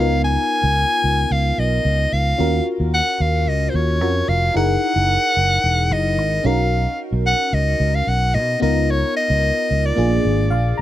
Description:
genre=polished 1980s jazz-funk pop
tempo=111 BPM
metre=4/4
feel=straight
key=unclear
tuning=A4 = 440 Hz
part: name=breathy soprano saxophone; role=melody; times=0.0-10.8 s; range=C5 to Ab5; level=-20 LUFS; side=left 1 dB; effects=none
part: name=FM electric piano with soft pad layer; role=accompaniment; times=0.0-10.8 s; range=Bb3 to Bb5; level=-23 LUFS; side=left 1 dB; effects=wide subtle chorus
part: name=fingered electric bass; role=bass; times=0.0-10.8 s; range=Fb1 to B2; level=-19 LUFS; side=equal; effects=none
room=light reverb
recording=none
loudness=-16 LUFS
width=side -13 dB against mid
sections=0.0-10.8 A section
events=FM electric piano fill 10.2-10.8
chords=0.0 Db13; 2.4 Ebm9; 4.6 Gb13; 6.5 Bmaj9; 8.6 Db13; 10.0 Bb7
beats=| 0.23 0.77 1.31 1.85 | 2.39 2.93 3.47 4.01 | 4.56 5.10 5.64 6.18 | 6.72 7.26 7.81 8.35 | 8.89 9.43 9.97 10.52

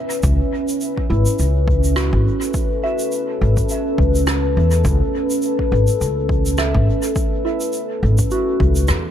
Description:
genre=ambient dub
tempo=104 BPM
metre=4/4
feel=swing 57% on 16ths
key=unclear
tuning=A4 = 440 Hz
part: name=deep dark ambient pad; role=sustained chords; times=0.0-9.1 s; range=C#4 to E5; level=-21 LUFS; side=equal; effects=chorus, built-in reverb
part: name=soft synth bell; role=arpeggios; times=0.0-9.1 s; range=E4 to E5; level=-27 LUFS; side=right 1 dB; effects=chorus, phaser, dub echo
part: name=shaker and rim click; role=drums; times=0.1-9.0 s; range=none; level=-27 LUFS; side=right 1 dB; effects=dub echo
part: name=upright bass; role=bass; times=0.2-9.1 s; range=G#1 to E2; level=-16 LUFS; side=equal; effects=tube saturation
part: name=electronic kick drum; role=drums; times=0.2-8.7 s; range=none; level=-22 LUFS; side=equal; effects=overdrive
room=light reverb, small room ambience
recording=none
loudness=-16 LUFS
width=side -10 dB against mid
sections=0.0-9.1 A section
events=none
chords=0.2 Asus2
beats=| 0.24 0.81 1.39 1.97 | 2.54 3.12 3.70 4.28 | 4.85 5.43 6.01 6.58 | 7.16 7.74 8.31 8.89

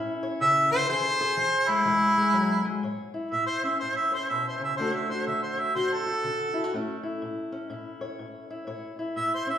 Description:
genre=acoustic country blues, solo or duo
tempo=123 BPM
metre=4/4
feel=swing 63% on 8ths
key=A major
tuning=A4 = 440 Hz
part: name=fingerpicked steel-string acoustic guitar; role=accompaniment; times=0.0-9.6 s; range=A2 to C#5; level=-30 LUFS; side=left 2 dB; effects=none
part: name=warm harmonica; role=melody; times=0.4-9.6 s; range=E4 to E5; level=-24 LUFS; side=right 1 dB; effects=none
room=wet recital hall reverb, RT60 1.4 s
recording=recorded in a church or concert hall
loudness=-24 LUFS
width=side -10 dB against mid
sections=0.0-2.8 A section; 2.8-9.6 B section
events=harmonica solo 0.0-2.8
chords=0.0 A; 0.9 E; 2.8 A; 4.8 D; 6.7 A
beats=0.40 | 0.88 1.37 1.85 2.33 | 2.82 3.31 3.79 4.28 | 4.77 5.26 5.75 6.23 | 6.72 7.21 7.70 8.18 | 8.67 9.16

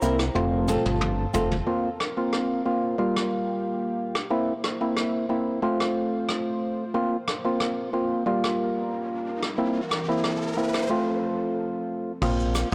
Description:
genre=dancehall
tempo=91 BPM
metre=4/4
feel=straight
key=unclear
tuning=A4 = 441 Hz
part: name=percussive organ stab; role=accompaniment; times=0.0-12.7 s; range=G3 to F4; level=-28 LUFS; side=equal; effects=chorus
part: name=warm analog pad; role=sustained chords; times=0.0-12.2 s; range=E3 to Bb5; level=-37 LUFS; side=equal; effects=chorus, sidechain pumping
part: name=flamenco guitar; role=arpeggios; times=0.0-1.6 s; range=C4 to Bb4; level=-33 LUFS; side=equal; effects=tape echo
part: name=fat analog bass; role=bass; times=0.0-1.6, 12.2-12.7 s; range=F1 to C2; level=-30 LUFS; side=equal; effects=none
part: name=vintage brush drum kit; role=drums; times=0.0-12.7 s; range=crash cymbal, hi-hat, kick drum, rim click, shaker, toms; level=-32 LUFS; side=equal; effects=vintage 12-bit sampler grit, soft clipping on snare
part: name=cabasa and woodblock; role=percussion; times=0.0-1.5, 12.2-12.7 s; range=none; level=-40 LUFS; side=equal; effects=none
part: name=riser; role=sound effects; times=8.8-10.9 s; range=none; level=-38 LUFS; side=equal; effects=none
room=light reverb, small room ambience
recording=blown-out, overdriven recording, overdrive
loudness=-26 LUFS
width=mono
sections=0.0-1.7 A section; 1.7-12.2 B section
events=drum fill 0.4-1.7; riser 8.8-12.2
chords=0.4 F; 1.7 Bbsus2; 3.0 Gm7; 4.3 C7; 5.6 F; 6.9 Bbsus2; 8.3 Gm7; 9.6 C7; 10.9 F; 12.2 Bbsus2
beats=0.35 1.01 | 1.67 2.33 2.99 3.65 | 4.31 4.97 5.63 6.29 | 6.95 7.60 8.26 8.92 | 9.58 10.24 10.90 11.56 | 12.22

